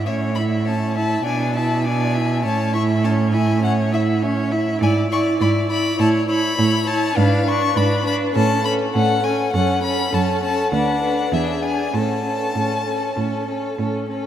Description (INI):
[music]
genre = quick classical-period movement for string quartet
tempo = 101 BPM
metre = 4/4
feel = straight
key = A major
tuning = A4 = 437 Hz
[part]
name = rich violin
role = second line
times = 0.0-14.3 s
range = G#4 to E5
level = -26 LUFS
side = left 2 dB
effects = none
[part]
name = rich viola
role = accompaniment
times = 0.0-14.3 s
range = C#4 to E4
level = -23 LUFS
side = right 1 dB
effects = none
[part]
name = clear cello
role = bass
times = 0.0-14.3 s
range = D2 to B2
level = -21 LUFS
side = right 3 dB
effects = none
[part]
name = rich violin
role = melody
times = 0.1-13.8 s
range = E5 to C#6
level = -24 LUFS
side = left 4 dB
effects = none
[sound]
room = wet cathedral reverb, RT60 6.2 s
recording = in a vast, echoing space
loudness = -17 LUFS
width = side -10 dB against mid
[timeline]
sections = 0.0-14.3 A section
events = none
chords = 0.1 A; 1.3 E7/B; 2.4 A; 4.8 E7/G#; 6.0 A; 7.2 G#dim; 8.4 A; 9.5 F#m; 10.7 Bm/D; 11.3 E7; 11.9 A